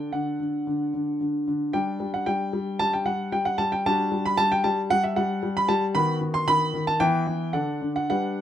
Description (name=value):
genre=classical-period piano sonatina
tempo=114 BPM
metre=4/4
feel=straight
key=unclear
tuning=A4 = 440 Hz
part: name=warm grand piano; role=solo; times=0.0-8.4 s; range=D3 to C6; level=-22 LUFS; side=equal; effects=none
room=light reverb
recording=none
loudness=-22 LUFS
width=side -10 dB against mid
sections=0.0-8.4 A section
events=none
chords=0.0 D; 1.7 G5; 3.8 D/G; 5.9 B/D#; 7.0 Em; 7.5 D